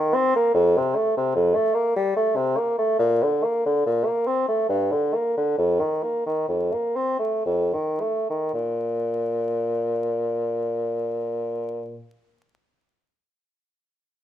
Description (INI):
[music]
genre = classical, baroque-style fantasia for unaccompanied bassoon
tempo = 53-77 BPM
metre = 3/4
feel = rubato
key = unclear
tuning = A4 = 440 Hz
[part]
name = mellow bassoon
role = solo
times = 0.0-12.1 s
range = F2 to C4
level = -21 LUFS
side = equal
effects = none
[sound]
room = moderate stone room reverb, RT60 1.0 s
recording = vinyl crackle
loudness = -21 LUFS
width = side -11 dB against mid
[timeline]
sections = 0.0-8.5 A section; 8.5-11.6 B section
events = slowing down 1.8-8.5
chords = none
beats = | 0.56 1.35 2.15 | 3.00 3.85 4.70 | 5.57 6.47 7.45 | 8.53 9.54 10.56